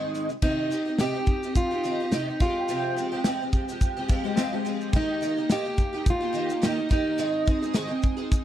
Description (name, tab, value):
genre	acoustic pop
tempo	106 BPM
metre	4/4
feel	swing 55% on 16ths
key	C minor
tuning	A4 = 440 Hz
part	picked twelve-string acoustic guitar	accompaniment	0.0-8.4 s	F2 to Ab4	-29 LUFS	right 2 dB	ensemble chorus
part	modern studio drum kit	drums	0.1-8.4 s	crash cymbal, kick drum, shaker, snare drum	-24 LUFS	equal	none
part	fingerpicked plugged-in steel-string acoustic guitar	melody	0.4-7.7 s	Eb4 to G4	-27 LUFS	equal	none
part	warm cello	second line	4.2-4.9 s	Ab3 to C4	-31 LUFS	left 12 dB	none
room	small room ambience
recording	dry, close 1970s-style studio recording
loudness	-23 LUFS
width	side -11 dB against mid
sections	0.4-8.4 A section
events	none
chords	0.4 Cm; 2.4 Fmadd9; 4.9 Eb; 7.2 Ab